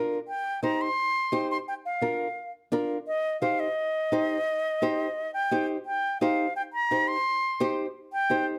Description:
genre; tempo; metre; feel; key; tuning
latin; 172 BPM; 4/4; straight; C minor; A4 = 443 Hz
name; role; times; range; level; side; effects
nylon-string guitar; accompaniment; 0.0-8.5 s; D4 to C5; -30 LUFS; equal; none
bright reedy concert flute; melody; 0.3-8.5 s; Eb5 to C6; -29 LUFS; equal; plate reverb
room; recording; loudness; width
moderate studio reverb, RT60 0.7 s; none; -28 LUFS; mono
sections
0.0-5.9 A section; 5.9-8.6 B section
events
none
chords
0.3 Cm; 1.7 Bb; 3.1 Cm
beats
| 0.28 0.63 0.98 1.33 | 1.68 2.02 2.37 2.72 | 3.07 3.42 3.77 4.12 | 4.47 4.82 5.17 5.51 | 5.86 6.21 6.56 6.91 | 7.25 7.60 7.95 8.30

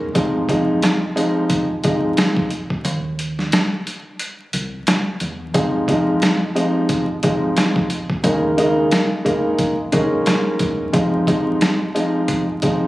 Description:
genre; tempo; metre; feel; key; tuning
hip hop, boom-bap hip-hop; 89 BPM; 4/4; swing 57% on 16ths; F minor; A4 = 438 Hz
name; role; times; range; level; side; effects
dark grand piano; accompaniment; 0.0-12.9 s; C3 to Eb4; -17 LUFS; equal; cassette tape, high-pass filter, low-pass filter
deep dub fingered electric bass; bass; 0.0-12.9 s; F1 to E2; -27 LUFS; right 1 dB; none
boom bap sampler-style drum kit; drums; 0.2-12.8 s; hi-hat, kick drum, rim click, snare drum; -20 LUFS; equal; none
room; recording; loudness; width
light reverb; recorded on a phone in the room, club reverb, vinyl crackle, compression; -16 LUFS; side -17 dB against mid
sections
0.0-12.9 A section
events
break 2.8-5.5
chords
0.2 Fm7; 2.8 Cm; 5.5 Fm7; 8.2 Eb7sus4; 10.9 Fm7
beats
| 0.15 0.82 1.50 2.17 | 2.85 3.52 4.20 4.87 | 5.54 6.22 6.89 7.57 | 8.24 8.91 9.59 10.26 | 10.94 11.61 12.29

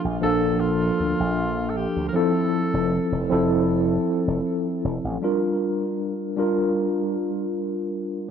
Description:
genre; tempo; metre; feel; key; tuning
vaporwave; 78 BPM; 4/4; straight; G dorian; A4 = 441 Hz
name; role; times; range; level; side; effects
mellow tine electric piano; accompaniment; 0.0-8.3 s; F3 to Bb4; -22 LUFS; equal; medium stereo tremolo, wide subtle chorus, tape echo
slap bass with an envelope filter; bass; 0.0-5.2 s; F1 to D2; -28 LUFS; equal; none
clear alto saxophone; melody; 0.2-3.3 s; F4 to Bb4; -29 LUFS; equal; tape echo
room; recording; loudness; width
moderate lush hall reverb, RT60 3.1 s; rough home demo mix, cassette tape, nothing above 7.5 kHz; -21 LUFS; side -8 dB against mid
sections
0.0-5.2 A section; 5.2-8.3 B section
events
none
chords
0.0 Bbmaj7; 2.2 Fmaj7; 5.2 Gm7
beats
0.61 1.38 | 2.15 2.92 3.69 4.46 | 5.23 6.00 6.77 7.54

